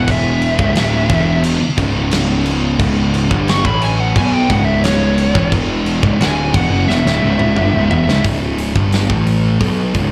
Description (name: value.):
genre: stoner and doom metal.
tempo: 88 BPM.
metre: 4/4.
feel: straight.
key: C# minor.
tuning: A4 = 441 Hz.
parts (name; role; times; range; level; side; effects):
fuzz lead guitar; melody; 0.0-8.2 s; C#5 to C#6; -23 LUFS; equal; distortion, slapback echo, digital delay.
overdriven electric guitar; riff; 0.0-8.2 s; C#2 to B3; -25 LUFS; equal; none.
thick fuzz guitar; riff; 0.0-10.1 s; C#2 to B3; -22 LUFS; equal; none.
thick fuzz guitar; riff; 0.0-10.1 s; C#2 to B3; -23 LUFS; equal; distortion.
fuzz picked electric bass; bass; 0.0-10.1 s; C#1 to B1; -21 LUFS; equal; overdrive.
big rock drum kit; drums; 0.1-10.1 s; crash cymbal, hi-hat, kick drum, snare drum, toms; -21 LUFS; equal; none.
room: small room ambience.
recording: live gig heard through the venue's PA, club reverb.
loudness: -15 LUFS.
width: mono.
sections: 0.0-8.2 A section; 8.2-10.1 B section.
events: lead electric guitar solo 0.0-8.2; drum fill 6.9-8.2.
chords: 0.0 E5; 0.6 C#m; 5.4 E5; 6.0 C#m.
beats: | 0.08 0.76 1.44 2.12 | 2.80 3.48 4.16 4.84 | 5.52 6.20 6.88 7.57 | 8.25 8.93 9.61.